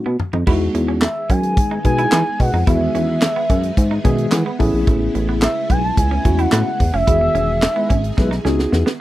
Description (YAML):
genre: early-eighties boogie funk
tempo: 109 BPM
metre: 4/4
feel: straight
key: E major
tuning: A4 = 440 Hz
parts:
  - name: mellow tine electric piano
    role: accompaniment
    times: 0.0-8.9 s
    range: D#3 to G#5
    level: -21 LUFS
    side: left 1 dB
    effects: medium stereo tremolo
  - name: semi-hollow electric guitar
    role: riff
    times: 0.1-9.0 s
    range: A3 to E4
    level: -28 LUFS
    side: right 7 dB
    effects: analog chorus
  - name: chorused synth bass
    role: bass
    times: 0.1-8.8 s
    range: E1 to E3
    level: -19 LUFS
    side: equal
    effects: none
  - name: tight funk drum kit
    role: drums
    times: 0.2-9.0 s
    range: crash cymbal, handclaps, hi-hat, kick drum, snare drum, toms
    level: -18 LUFS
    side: equal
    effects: none
  - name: string machine, violins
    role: sustained chords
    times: 0.5-9.0 s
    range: C#3 to G#4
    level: -28 LUFS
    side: equal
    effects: ensemble chorus
  - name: gliding portamento lead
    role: melody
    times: 1.0-8.7 s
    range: E5 to A5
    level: -21 LUFS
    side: equal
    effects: chorus
  - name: mellow synth brass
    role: second line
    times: 7.8-8.3 s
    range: G#3 to B4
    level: -24 LUFS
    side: left 1 dB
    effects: chorus
room: light reverb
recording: dry, close 1970s-style studio recording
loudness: -15 LUFS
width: side -15 dB against mid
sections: 0.5-9.0 A section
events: drum fill 0.0-0.5, 8.2-9.0; tine electric piano fill 3.8-4.9; band accent 7.1-9.0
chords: 0.5 Emaj7; 4.6 Amaj9; 7.1 Emaj7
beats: | 0.47 1.02 1.57 2.12 | 2.67 3.22 3.77 4.32 | 4.87 5.42 5.97 6.53 | 7.08 7.63 8.18 8.73